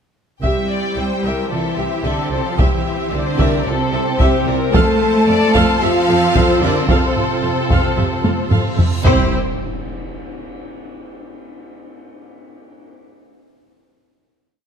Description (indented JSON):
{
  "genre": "cinematic, epic orchestral film score",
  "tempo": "112 BPM",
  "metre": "4/4",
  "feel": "straight",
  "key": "C major",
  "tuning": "A4 = 441 Hz",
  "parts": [
    { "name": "rich symphonic violin section", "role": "melody", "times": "0.4-9.3 s", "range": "G4 to E5", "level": "-24 LUFS", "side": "left 5 dB", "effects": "none" },
    { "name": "warm symphonic violin section", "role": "second line", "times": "0.4-9.3 s", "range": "C5 to A5", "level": "-24 LUFS", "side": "equal", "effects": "none" },
    { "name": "rich studio viola section", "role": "accompaniment", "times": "0.4-9.3 s", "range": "E4 to F5", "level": "-24 LUFS", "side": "right 2 dB", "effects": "none" },
    { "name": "clear French horn section", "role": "sustained chords", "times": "0.4-9.3 s", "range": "C4 to A4", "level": "-22 LUFS", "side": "left 2 dB", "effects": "none" },
    { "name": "rich symphonic string section", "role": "sustained chords", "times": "0.4-9.3 s", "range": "C4 to C5", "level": "-24 LUFS", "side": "equal", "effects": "none" },
    { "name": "rich symphonic cello section", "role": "bass", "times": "0.4-9.3 s", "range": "C3 to C4", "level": "-22 LUFS", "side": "right 2 dB", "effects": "none" },
    { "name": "rich symphonic double bass section", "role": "bass", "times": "0.4-9.3 s", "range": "C2 to F2", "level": "-23 LUFS", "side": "right 3 dB", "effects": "none" },
    { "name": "solo taiko drums", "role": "drums", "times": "0.4-9.2 s", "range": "none", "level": "-18 LUFS", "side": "equal", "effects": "none" },
    { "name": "reverse cymbal and impact", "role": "sound effects", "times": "8.7-11.2 s", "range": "none", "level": "-29 LUFS", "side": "equal", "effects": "none" }
  ],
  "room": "moderate scoring stage reverb, RT60 1.6 s",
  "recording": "none",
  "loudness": "-14 LUFS",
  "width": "side -7 dB against mid",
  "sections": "0.4-9.0 theme; 9.0-11.2 final chord",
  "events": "drum fill 8.2-9.0; reverse cymbal 8.7-9.0; impact 9.0-11.2",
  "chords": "0.4 C; 4.7 F; 9.0 C"
}